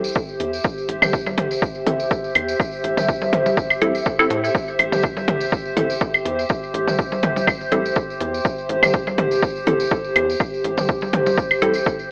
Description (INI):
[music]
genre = minimal techno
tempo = 123 BPM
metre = 4/4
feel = swing 54% on 16ths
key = A minor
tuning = A4 = 440 Hz
[part]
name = wavetable chord stab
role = stabs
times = 0.0-11.7 s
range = C4 to A4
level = -24 LUFS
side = equal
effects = phaser, tape echo
[part]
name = rubbery square bass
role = bass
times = 0.0-11.8 s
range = A1 to A2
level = -31 LUFS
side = equal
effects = sidechain pumping
[part]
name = tambourine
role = percussion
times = 0.0-12.1 s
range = none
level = -38 LUFS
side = equal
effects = none
[part]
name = warbly tape-like pad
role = texture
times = 0.0-12.1 s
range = G4 to E5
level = -25 LUFS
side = equal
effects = chorus, built-in reverb, phaser, sidechain pumping
[part]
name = electronic kick drum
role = drums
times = 0.2-12.0 s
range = none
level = -26 LUFS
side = equal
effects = none
[part]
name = electronic hi-hat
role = drums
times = 0.4-11.7 s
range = none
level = -35 LUFS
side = equal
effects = none
[part]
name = electronic toms, congas and claves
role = percussion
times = 1.0-11.7 s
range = none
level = -24 LUFS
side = equal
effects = tape echo
[sound]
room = moderate lush hall reverb, RT60 2.1 s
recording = dry, gritty hardware recording, cassette tape, AM radio sound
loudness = -20 LUFS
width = mono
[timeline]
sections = 0.0-12.1 A section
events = filter sweep on synth stab 0.0-12.1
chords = 0.0 Am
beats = 0.16 | 0.65 1.13 1.62 2.11 | 2.60 3.08 3.57 4.06 | 4.55 5.04 5.52 6.01 | 6.50 6.99 7.47 7.96 | 8.45 8.94 9.43 9.91 | 10.40 10.89 11.38 11.87